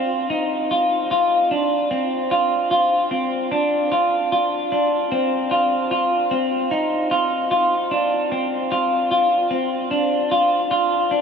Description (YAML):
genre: dream pop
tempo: 75 BPM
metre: 4/4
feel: straight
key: unclear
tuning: A4 = 440 Hz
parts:
  - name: semi-hollow electric guitar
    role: solo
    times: 0.0-11.2 s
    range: C4 to F4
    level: -18 LUFS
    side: equal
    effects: wide subtle chorus, analog delay
room: wet huge ambient reverb, RT60 8.0 s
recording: dreamy mix soaked in reverb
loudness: -18 LUFS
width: side -6 dB against mid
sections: 0.0-11.2 A section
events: none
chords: none